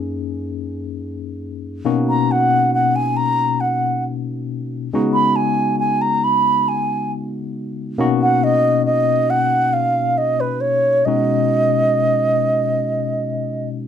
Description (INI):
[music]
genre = progressive instrumental, progressive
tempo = free time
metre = none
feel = none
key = B major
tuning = A4 = 440 Hz
[part]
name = barky tine electric piano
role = accompaniment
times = 0.0-13.9 s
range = F#2 to G#4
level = -20 LUFS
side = left 3 dB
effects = medium stereo tremolo
[part]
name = reedy baroque flute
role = melody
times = 2.1-13.7 s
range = B4 to B5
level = -17 LUFS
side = right 2 dB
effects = none
[sound]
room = moderate small room reverb, RT60 0.5 s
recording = none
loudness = -16 LUFS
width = side -9 dB against mid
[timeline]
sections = 0.0-13.9 A section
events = none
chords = 0.0 F#69; 1.8 Bmaj7; 4.9 C#7sus4; 8.0 Bmaj7; 11.1 B6